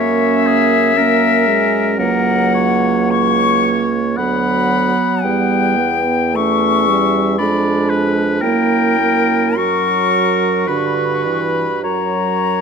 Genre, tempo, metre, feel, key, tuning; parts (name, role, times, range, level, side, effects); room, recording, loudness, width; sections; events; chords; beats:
classical, slow romantic movement for wind quintet; 50-60 BPM; 3/4; rubato; A4 = 440 Hz
silver concert flute; melody; 0.0-12.6 s; E5 to C#6; -18 LUFS; left 8 dB
clear oboe; second line; 0.0-12.6 s; G#4 to F#5; -22 LUFS; left 3 dB
mellow French horn; accompaniment; 0.0-12.6 s; D3 to B3; -20 LUFS; right 2 dB
mellow clarinet; accompaniment; 0.0-12.6 s; A#3 to F#4; -20 LUFS; right 11 dB
mellow bassoon; bass; 0.0-12.6 s; C#2 to G2; -21 LUFS; right 2 dB
moderate recital hall reverb, RT60 1.5 s; close, detailed microphones; -13 LUFS; side -6 dB against mid
0.0-12.6 A section
0.0 F#; 2.0 F#/C#; 4.2 Bm/D; 5.2 Em; 7.4 Fdim7; 8.4 F#7b9; 10.7 Gmaj7; 11.8 F#
0.97 | 2.00 3.12 4.18 | 5.25 6.36 7.39 | 8.43 9.57 10.68 | 11.83